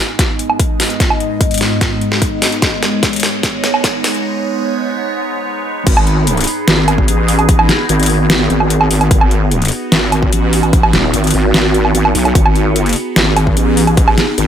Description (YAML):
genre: heavy wobble dubstep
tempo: 148 BPM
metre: 4/4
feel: half-time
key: G# phrygian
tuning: A4 = 440 Hz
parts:
  - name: evolving wavetable pad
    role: sustained chords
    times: 0.0-14.5 s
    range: G#2 to D#5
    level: -18 LUFS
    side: right 1 dB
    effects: phaser, built-in reverb, sidechain pumping
  - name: dubstep drum kit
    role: drums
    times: 0.2-14.5 s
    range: crash cymbal, hi-hat, snare drum, woodblock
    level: -15 LUFS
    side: right 1 dB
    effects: overdrive, high-pass filter on hats, high-pass filter on toms, high-pass filter on snare, high-pass filter on perc, high-pass filter on cymbals, high-pass filter on room
  - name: electronic kick drum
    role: drums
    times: 0.2-14.1 s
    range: none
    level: -14 LUFS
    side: equal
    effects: overdrive
  - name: wobble bass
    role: bass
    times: 5.9-14.5 s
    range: D#1 to B1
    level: -14 LUFS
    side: equal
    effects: chorus, overdrive
room: digital ambience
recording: high-pass filter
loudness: -11 LUFS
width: side -9 dB against mid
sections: 0.0-5.9 A section; 5.9-14.5 B section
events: build-up 0.0-5.9; drum fill 0.0-4.2; filter sweep 0.0-5.9; break 4.2-5.9; drop 5.9-14.5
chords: 0.0 G#m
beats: 0.19 0.59 | 1.00 1.41 1.81 2.22 | 2.62 3.03 3.43 3.84 | 4.24 4.65 5.05 5.46 | 5.87 6.27 6.68 7.08 | 7.49 7.89 8.30 8.70 | 9.11 9.51 9.92 10.32 | 10.73 11.14 11.54 11.95 | 12.35 12.76 13.16 13.57 | 13.97 14.38